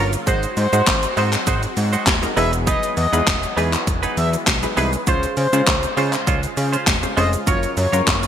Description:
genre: dance-pop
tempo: 100 BPM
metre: 4/4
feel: straight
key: Db major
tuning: A4 = 441 Hz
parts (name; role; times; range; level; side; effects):
- punchy chord stab; accompaniment; 0.0-8.3 s; Gb3 to C5; -26 LUFS; left 2 dB; chorus, sidechain pumping
- supersaw pad; sustained chords; 0.0-8.3 s; Db3 to C5; -28 LUFS; equal; phaser, sidechain pumping
- direct-recorded clean electric guitar; riff; 0.0-8.3 s; Ab3 to Db5; -25 LUFS; right 5 dB; analog chorus
- fat analog bass; bass; 0.0-8.3 s; Eb1 to Db3; -21 LUFS; equal; sidechain pumping
- house drum kit; drums; 0.1-8.3 s; handclaps, hi-hat, kick drum, shaker, snare drum; -20 LUFS; equal; gated reverb
- expressive synth lead; melody; 0.3-8.3 s; C5 to E5; -24 LUFS; left 1 dB; chorus, ping-pong delay
room: light reverb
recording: bright 1980s-style digital production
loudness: -16 LUFS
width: side -9 dB against mid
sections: 0.0-8.3 A section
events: none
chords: 0.3 Ab7; 2.4 Emaj7; 5.1 Dbmaj7; 7.5 Gbmaj7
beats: | 0.27 0.87 1.47 2.07 | 2.67 3.27 3.87 4.47 | 5.07 5.67 6.27 6.87 | 7.47 8.07

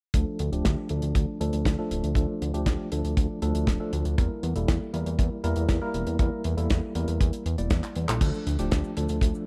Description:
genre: italo disco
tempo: 119 BPM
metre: 4/4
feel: straight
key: D minor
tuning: A4 = 440 Hz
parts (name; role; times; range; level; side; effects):
- tine electric piano; stabs; 0.1-9.4 s; F3 to D5; -33 LUFS; equal; low-pass filter, tape echo
- fat analog bass; bass; 0.1-9.3 s; D1 to E2; -30 LUFS; equal; none
- damped 70s drum kit; drums; 0.1-9.4 s; cabasa, crash cymbal, handclaps, hi-hat, snare drum; -35 LUFS; equal; none
- kick drum; drums; 0.1-9.3 s; none; -28 LUFS; equal; none
room: small room ambience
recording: dry, close 1970s-style studio recording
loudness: -27 LUFS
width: mono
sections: 0.1-8.2 A section; 8.2-9.5 B section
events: drum fill 7.8-8.2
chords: 0.1 Dm; 4.2 Edim; 8.2 Dm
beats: | 0.15 0.65 1.15 1.66 | 2.16 2.67 3.17 3.67 | 4.18 4.68 5.19 5.69 | 6.20 6.70 7.21 7.71 | 8.21 8.72 9.22

